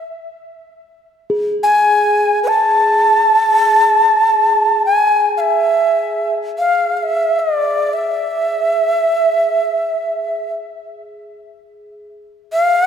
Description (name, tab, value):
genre	world meditative, free-time meditation music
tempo	free time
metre	none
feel	none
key	unclear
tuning	A4 = 440 Hz
part	Native American-style cedar flute	melody	0.0-12.9 s	B4 to A5	-13 LUFS	equal	ping-pong delay
part	quartz singing bowl	texture	1.3-8.6 s	G#4	-24 LUFS	equal	none
room	wet church reverb, RT60 2.9 s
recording	none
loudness	-12 LUFS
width	side -8 dB against mid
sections	0.6-12.9 A section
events	none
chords	none